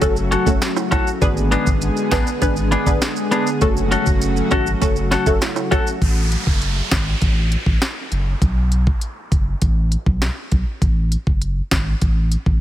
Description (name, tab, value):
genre	dancehall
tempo	100 BPM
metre	4/4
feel	straight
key	F# minor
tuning	A4 = 440 Hz
part	punchy chord stab	accompaniment	0.0-6.0 s	A3 to B4	-23 LUFS	equal	chorus, phaser, sidechain pumping
part	lush unison pad	sustained chords	0.0-6.0 s	C#3 to G#4	-23 LUFS	left 1 dB	chorus, sidechain pumping
part	warm sub bass	bass	0.0-12.6 s	F#1 to B1	-20 LUFS	equal	none
part	afro-pop drum kit	drums	0.0-12.6 s	hi-hat, kick drum, rim click, snare drum	-19 LUFS	equal	none
part	maracas and timbales	percussion	0.0-6.0 s	none	-28 LUFS	right 7 dB	none
part	semi-hollow electric guitar	arpeggios	0.3-5.9 s	B3 to A4	-23 LUFS	left 2 dB	none
part	downlifter	sound effects	6.0-10.8 s	none	-28 LUFS	right 2 dB	none
room	digital ambience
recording	heavily compressed radio sound, multiband compression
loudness	-16 LUFS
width	side -12 dB against mid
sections	0.0-6.0 A section; 6.0-12.6 B section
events	none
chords	0.0 F#m; 1.2 G#dim; 3.6 F#m; 8.4 B5; 10.8 F#madd9